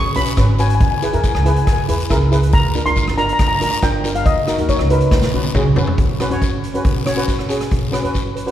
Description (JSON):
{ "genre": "calypso", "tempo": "139 BPM", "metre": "4/4", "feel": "straight", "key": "unclear", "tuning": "A4 = 442 Hz", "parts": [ { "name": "steel pan", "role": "melody", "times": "0.0-5.7 s", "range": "B4 to C#6", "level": "-20 LUFS", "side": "left 2 dB", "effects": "none" }, { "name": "steel pan", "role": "accompaniment", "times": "0.2-8.5 s", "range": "C#4 to C#5", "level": "-21 LUFS", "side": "equal", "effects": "none" }, { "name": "upright bass", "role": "bass", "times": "0.2-8.5 s", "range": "G1 to B2", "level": "-20 LUFS", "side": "right 1 dB", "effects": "none" }, { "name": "street-band drum kit", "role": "drums", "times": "0.2-8.5 s", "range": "hi-hat, kick drum, rim click, snare drum, toms", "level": "-19 LUFS", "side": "equal", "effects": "none" }, { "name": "guiro", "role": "percussion", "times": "0.4-8.2 s", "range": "none", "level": "-31 LUFS", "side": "left 5 dB", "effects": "none" } ], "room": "moderate concert hall reverb, RT60 2.1 s", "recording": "recorded in a church or concert hall", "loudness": "-14 LUFS", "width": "side -11 dB against mid", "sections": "0.0-6.0 A section; 6.0-8.5 B section", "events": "drum fill 5.1-6.0; steel pan fill 8.1-8.5", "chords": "0.0 Bsus2; 0.8 E6; 2.5 A#; 4.3 D#m; 5.1 Bsus2" }